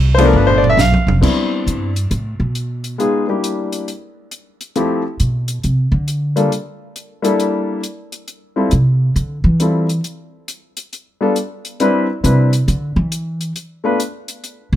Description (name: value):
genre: jazz piano trio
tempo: 136 BPM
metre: 4/4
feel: swing 65% on 8ths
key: C major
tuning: A4 = 436 Hz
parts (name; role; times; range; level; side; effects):
- upright bass; bass; 0.0-14.8 s; F1 to E3; -15 LUFS; right 1 dB; none
- clear baby grand piano; melody; 0.1-14.0 s; F3 to F5; -16 LUFS; left 2 dB; plate reverb
- compact cocktail drum kit; drums; 0.2-14.6 s; crash cymbal, hi-hat, kick drum, ride cymbal, snare drum, toms; -23 LUFS; right 3 dB; none
room: light reverb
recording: close, detailed microphones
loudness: -14 LUFS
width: side -12 dB against mid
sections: 0.0-1.2 A section; 1.2-14.8 A section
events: grand piano solo 0.0-1.2; drum fill 0.3-1.2; upright bass solo 1.2-14.8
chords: 0.3 G7; 1.2 Cmaj7; 3.0 Em7b5; 3.9 N.C.; 4.8 Dm11; 6.5 Gm69; 8.3 Fmaj9; 10.0 N.C.; 11.8 Cmaj7; 13.6 N.C.